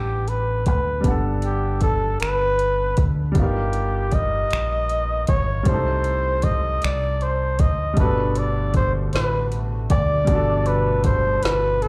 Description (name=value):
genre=slow six-eight R&B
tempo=52 BPM (dotted quarters)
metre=6/8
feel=straight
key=G major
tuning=A4 = 440 Hz
part: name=warm flugelhorn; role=melody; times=0.0-11.9 s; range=G4 to Eb5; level=-26 LUFS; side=equal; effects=slapback echo
part: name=warm concert grand piano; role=accompaniment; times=0.0-11.9 s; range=B2 to F#5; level=-30 LUFS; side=equal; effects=slapback echo
part: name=deep dub fingered electric bass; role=bass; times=0.0-11.9 s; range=G1 to D2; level=-26 LUFS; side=equal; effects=none
part: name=smooth R&B drum kit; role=drums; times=0.3-11.9 s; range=finger snaps, hi-hat, kick drum, snare drum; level=-24 LUFS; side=equal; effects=none
part: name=hollow soft pad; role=sustained chords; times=8.0-11.9 s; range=B2 to F#4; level=-34 LUFS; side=equal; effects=none
room=digital ambience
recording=live gig heard through the venue's PA, club reverb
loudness=-21 LUFS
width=mono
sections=0.0-11.9 A section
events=none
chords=0.0 Gmaj9; 3.4 G7alt; 5.7 Cm6; 8.0 Gmaj9